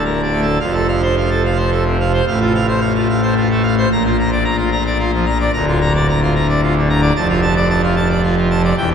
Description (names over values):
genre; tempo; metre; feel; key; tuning
classical, organ toccata; 111 BPM; 3/4; straight; F major; A4 = 439 Hz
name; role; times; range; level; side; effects
pipe organ, full organ; solo; 0.0-8.9 s; D1 to Bb5; -13 LUFS; equal; none
room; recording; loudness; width
wet cathedral reverb, RT60 5.9 s; recorded in a church or concert hall; -13 LUFS; side -7 dB against mid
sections
0.6-8.9 A section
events
none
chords
0.0 D5; 0.6 F; 2.3 F/A; 3.9 Bb; 5.5 Bb/D; 7.1 Dm/F